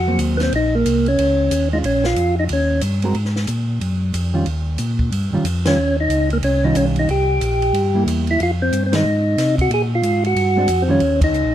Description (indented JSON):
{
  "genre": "soul jazz organ trio",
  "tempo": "183 BPM",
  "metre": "4/4",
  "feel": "swing 62% on 8ths",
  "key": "Eb mixolydian",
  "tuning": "A4 = 441 Hz",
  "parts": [
    { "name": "percussive tonewheel organ", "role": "melody", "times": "0.0-2.8, 5.7-11.5 s", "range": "Bb3 to Ab4", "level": "-18 LUFS", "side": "equal", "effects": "slow rotary speaker, plate reverb" },
    { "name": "mellow tonewheel organ", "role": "bass", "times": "0.0-11.5 s", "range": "Bb1 to C3", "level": "-20 LUFS", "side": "equal", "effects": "chorus vibrato, slow rotary speaker" },
    { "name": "hollow-body jazz guitar", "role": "accompaniment", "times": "0.1-11.0 s", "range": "Eb3 to Bb4", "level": "-22 LUFS", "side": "right 1 dB", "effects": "none" },
    { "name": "compact cocktail drum kit", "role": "drums", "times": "0.2-11.4 s", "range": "hi-hat, kick drum, ride cymbal, snare drum", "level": "-28 LUFS", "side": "right 1 dB", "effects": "none" }
  ],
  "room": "light reverb",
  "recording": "dark, warm production",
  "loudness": "-16 LUFS",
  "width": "side -11 dB against mid",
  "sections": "0.0-11.5 A section",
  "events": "band accent 5.6, 8.9, 11.2",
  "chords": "0.0 Ab9 (rootless); 0.5 Eb5; 1.8 Bb5; 2.5 Eb7; 3.1 Absus2; 4.5 Eb9; 7.1 C7; 8.4 Fm7; 9.7 Bb7(no3); 11.0 Eb7(no3)",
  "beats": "0.20 | 0.52 0.85 1.18 1.51 | 1.83 2.16 2.49 2.82 | 3.15 3.47 3.80 4.13 | 4.46 4.79 5.11 5.44 | 5.77 6.10 6.42 6.75 | 7.08 7.41 7.74 8.06 | 8.39 8.72 9.05 9.38 | 9.70 10.03 10.36 10.69 | 11.01 11.34"
}